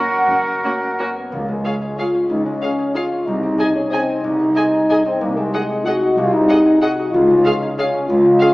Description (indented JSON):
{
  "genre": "classical, orchestral ballroom waltz",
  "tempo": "167-203 BPM",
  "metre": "3/4",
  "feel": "rubato",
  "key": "Db major",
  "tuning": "A4 = 443 Hz",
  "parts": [
    { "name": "muted chamber violin section", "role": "melody", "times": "0.0-8.5 s", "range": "F#4 to Ab5", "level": "-28 LUFS", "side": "left 1 dB", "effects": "none" },
    { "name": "clear oboe", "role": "second line", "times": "0.0-1.1 s", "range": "A#4", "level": "-22 LUFS", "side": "right 1 dB", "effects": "none" },
    { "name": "mellow small flute group", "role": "second line", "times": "0.0-1.2 s", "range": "F#5", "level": "-22 LUFS", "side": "right 1 dB", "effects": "none" },
    { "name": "muted chamber violin section", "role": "second line", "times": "0.0-8.5 s", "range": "F#4 to F5", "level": "-29 LUFS", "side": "equal", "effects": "none" },
    { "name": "warm clarinet", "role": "second line", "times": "0.0-1.1 s", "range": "F#4", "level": "-26 LUFS", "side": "right 2 dB", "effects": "none" },
    { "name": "muted chamber viola section", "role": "accompaniment", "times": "0.0-8.5 s", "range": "A#3 to Ab4", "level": "-27 LUFS", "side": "right 1 dB", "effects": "none" },
    { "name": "concert harp", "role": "arpeggios", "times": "0.0-8.5 s", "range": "F#2 to F#5", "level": "-25 LUFS", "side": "left 2 dB", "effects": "none" },
    { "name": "muted chamber double bass section", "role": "bass", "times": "0.3-8.4 s", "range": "F#1 to Db2", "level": "-30 LUFS", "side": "right 1 dB", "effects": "none" },
    { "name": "muted symphonic cello section", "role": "bass", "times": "0.3-8.4 s", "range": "C2 to F#2", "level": "-26 LUFS", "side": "right 1 dB", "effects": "none" },
    { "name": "dark French horn section", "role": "sustained chords", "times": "1.1-8.5 s", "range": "Ab3 to Gb4", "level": "-16 LUFS", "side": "equal", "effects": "none" },
    { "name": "timpani", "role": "percussion", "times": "1.3-1.8, 7.1-7.6 s", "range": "Db3", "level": "-34 LUFS", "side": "equal", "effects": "none" }
  ],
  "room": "wet recital hall reverb, RT60 1.5 s",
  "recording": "small speaker sound",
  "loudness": "-15 LUFS",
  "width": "side -20 dB against mid",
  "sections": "0.0-1.3 A section; 1.3-8.5 B section",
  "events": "none",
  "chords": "0.0 F#; 1.3 Db; 3.3 Ab/C; 5.2 Ab7/C; 7.1 Db"
}